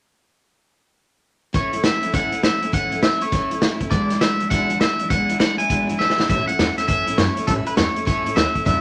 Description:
rockabilly; 202 BPM; 4/4; swing 63% on 8ths; A major; A4 = 436 Hz
picked steel-string acoustic guitar; accompaniment; 1.5-8.8 s; E2 to E4; -28 LUFS; equal
vintage drum kit; drums; 1.5-8.7 s; hi-hat, kick drum, snare drum; -24 LUFS; equal
twangy electric guitar; melody; 1.6-8.8 s; A4 to G#5; -24 LUFS; equal
upright bass; bass; 6.3-8.8 s; E1 to A2; -28 LUFS; equal
moderate club reverb, RT60 0.8 s; -20 LUFS; mono
1.5-6.3 A section; 6.3-8.8 B section
drum fill 6.0
1.5 A; 3.9 E7; 6.3 A
| 1.54 1.84 2.13 2.43 | 2.73 3.02 3.32 3.62 | 3.92 4.21 4.51 4.80 | 5.10 5.40 5.69 5.99 | 6.29 6.58 6.88 7.18 | 7.47 7.77 8.07 8.36 | 8.66

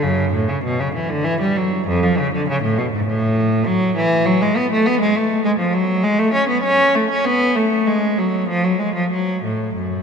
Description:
classical, baroque-style suite movement for unaccompanied cello; 99 BPM; 3/4; rubato; F# minor from 3.7 s; A4 = 440 Hz
rich cello; solo; 0.0-10.0 s; E#2 to C#4; -16 LUFS; equal
wet cathedral reverb, RT60 4.6 s; -16 LUFS; side -6 dB against mid
0.0-10.0 A section
| 0.02 0.64 1.24 | 1.87 2.48 3.07 | 3.66 4.26 4.86 | 5.45 6.05 6.65 | 7.27 7.88 8.49 | 9.12 9.77

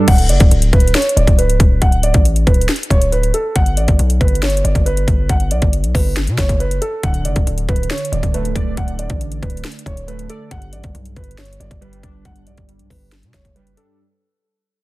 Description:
hip hop, trap; 138 BPM; 4/4; half-time; A4 = 440 Hz
dark concert grand piano; melody; 0.0-14.0 s; A4 to F#5; -22 LUFS; right 2 dB; low-pass filter
warbly lo-fi synth keys; accompaniment; 0.0-0.1, 7.0-14.0 s; G2 to D5; -24 LUFS; right 4 dB; chorus, low-pass filter
distorted 808-style bass; bass; 0.1-13.8 s; C#1 to B2; -17 LUFS; equal; distortion
trap drum kit; drums; 0.1-13.9 s; crash cymbal, hi-hat, kick drum, snare drum; -15 LUFS; equal
little or no reverb; dense, heavily limited modern master; -13 LUFS; side -20 dB against mid
0.1-14.0 A section
fade-out 0.1-14.0
0.1 N.C.; 7.0 D5; 10.5 G5
| 0.08 0.51 0.95 1.38 | 1.82 2.25 2.69 3.12 | 3.56 3.99 4.43 4.86 | 5.29 5.73 6.17 6.60 | 7.03 7.47 7.90 8.34 | 8.77 9.21 9.64 10.08 | 10.51 10.95 11.38 11.82 | 12.25 12.69 13.12 13.56

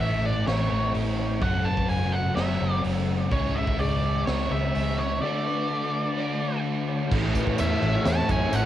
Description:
rock, shoegaze and dream pop; 127 BPM; 4/4; straight; A major; A4 = 440 Hz
octave-fuzz lead guitar; melody; 0.0-8.7 s; C#5 to A5; -30 LUFS; right 1 dB; distortion, cassette tape, analog delay
fingerpicked twelve-string acoustic guitar; arpeggios; 0.0-8.7 s; G#4 to C#5; -38 LUFS; left 5 dB; analog chorus, analog delay
overdriven electric guitar; riff; 0.0-8.7 s; F#2 to F#4; -31 LUFS; right 8 dB; reverse reverb
thick fuzz guitar; riff; 0.0-8.7 s; F#2 to D4; -29 LUFS; left 6 dB; distortion, ensemble chorus
vintage muted fingered electric bass; bass; 0.0-8.7 s; F#1 to F#2; -28 LUFS; right 1 dB
raw garage drum kit; drums; 0.0-8.6 s; crash cymbal, hi-hat, kick drum, snare drum; -30 LUFS; right 1 dB; cassette tape
chorused pulse-width pad; sustained chords; 7.1-8.7 s; A4 to C#6; -36 LUFS; right 1 dB
tambourine; percussion; 7.4-8.6 s; -43 LUFS; right 9 dB
light reverb; home recording on cassette; -23 LUFS; side -12 dB against mid
0.0-7.1 A section; 7.1-8.7 B section
break 5.2-7.1
0.0 A; 1.4 F#m7; 3.3 C#m; 5.2 Dmaj7; 7.1 A
0.01 0.48 0.95 | 1.43 1.90 2.38 2.85 | 3.33 3.80 4.28 4.75 | 5.22 5.70 6.17 6.64 | 7.12 7.59 8.06 8.53

